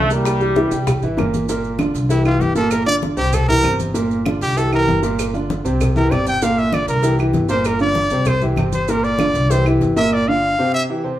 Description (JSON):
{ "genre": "latin, salsa", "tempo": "195 BPM", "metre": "4/4", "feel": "straight", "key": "unclear", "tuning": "A4 = 436 Hz", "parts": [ { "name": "brilliant trombone section", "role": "melody", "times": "0.0-1.2 s", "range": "E3 to G3", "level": "-20 LUFS", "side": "equal", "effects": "none" }, { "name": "clear grand piano", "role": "accompaniment", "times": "0.0-11.2 s", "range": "Bb2 to Bb5", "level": "-19 LUFS", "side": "right 1 dB", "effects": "none" }, { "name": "upright bass", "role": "bass", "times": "0.0-10.5 s", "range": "G1 to C2", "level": "-21 LUFS", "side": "equal", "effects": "none" }, { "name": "bongos and cowbell", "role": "percussion", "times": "0.1-10.1 s", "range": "none", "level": "-28 LUFS", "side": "left 3 dB", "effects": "none" }, { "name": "congas", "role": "percussion", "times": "0.1-10.1 s", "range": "none", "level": "-26 LUFS", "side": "left 2 dB", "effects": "none" }, { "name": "maracas", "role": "percussion", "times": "0.1-10.1 s", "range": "none", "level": "-36 LUFS", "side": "right 7 dB", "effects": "none" }, { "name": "claves", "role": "percussion", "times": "0.3-9.8 s", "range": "none", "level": "-34 LUFS", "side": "right 4 dB", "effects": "none" }, { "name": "clear trumpet", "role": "melody", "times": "2.1-10.8 s", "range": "E4 to G5", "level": "-19 LUFS", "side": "equal", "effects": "none" } ], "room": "moderate large studio reverb, RT60 0.9 s", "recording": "band playing live in one room", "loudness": "-15 LUFS", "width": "side -13 dB against mid", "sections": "0.0-1.5 A section; 1.5-11.2 B section", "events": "trumpet solo 1.5-11.2; drum fill 6.0-6.4; stop 10.1-11.2", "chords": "0.3 C7; 1.5 Gm7; 2.1 C7; 2.7 Gm7; 3.3 C7; 4.0 Gm7; 4.6 C7; 5.2 Gm7; 5.8 C; 6.4 Gm7; 7.0 C7; 7.7 Gm7; 8.3 C; 8.9 Gm7; 9.5 C7; 10.1 Gm7" }